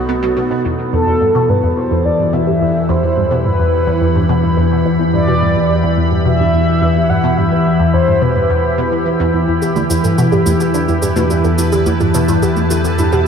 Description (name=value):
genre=ambient, sequencer-driven space music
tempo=107 BPM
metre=4/4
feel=straight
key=E minor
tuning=A4 = 443 Hz
part: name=mellow horn-like synth lead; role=melody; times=0.0-9.3 s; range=A4 to F#5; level=-18 LUFS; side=equal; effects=chorus, shimmer reverb, analog delay
part: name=evolving wavetable pad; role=sustained chords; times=0.0-13.3 s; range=B2 to B5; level=-16 LUFS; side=left 1 dB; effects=chorus, built-in reverb, shimmer reverb
part: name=round analog bass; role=bass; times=0.0-13.3 s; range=B1 to E2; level=-21 LUFS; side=equal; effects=none
part: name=bubbling stepped-filter texture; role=texture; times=0.0-13.3 s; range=A3 to F#5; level=-32 LUFS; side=right 1 dB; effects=chorus, built-in reverb, shimmer reverb
part: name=resonant blip pluck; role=riff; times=0.1-13.3 s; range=E2 to B3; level=-18 LUFS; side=equal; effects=phaser, ensemble chorus, analog delay
part: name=warbly dusty pluck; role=arpeggios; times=9.6-13.2 s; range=E4 to B4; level=-20 LUFS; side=right 3 dB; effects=chorus, auto-pan, shimmer reverb, analog delay
part: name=cabasa and congas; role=percussion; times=9.6-13.2 s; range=none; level=-25 LUFS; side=right 2 dB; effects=overdrive, analog delay
room=wet cathedral reverb, RT60 6.3 s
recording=in a vast, echoing space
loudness=-12 LUFS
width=side -7 dB against mid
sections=0.6-13.3 A section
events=fade-in on synth texture 0.6-13.3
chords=0.0 B7; 0.6 Em